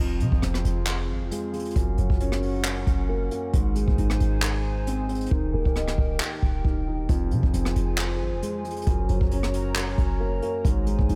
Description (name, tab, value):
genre	hip hop, trap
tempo	135 BPM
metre	4/4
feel	half-time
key	F minor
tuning	A4 = 438 Hz
part	dark grand piano	accompaniment	0.0-11.2 s	F2 to Eb5	-32 LUFS	equal	low-pass filter
part	warbly tape-like pad	sustained chords	0.4-11.2 s	C4 to Bb5	-37 LUFS	equal	chorus, built-in reverb
part	clean 808-style bass	bass	0.0-11.2 s	Db1 to C3	-28 LUFS	equal	none
part	jazz brush drum kit	drums	0.2-11.2 s	handclaps, hi-hat, kick drum, rim click	-29 LUFS	equal	none
room	little or no reverb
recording	none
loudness	-25 LUFS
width	mono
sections	0.0-11.2 A section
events	hi-hats muted 5.3-7.1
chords	0.0 Fm; 1.8 Gb; 3.5 Ab; 5.3 Eb; 7.1 Fm; 8.9 Gb; 10.6 Ab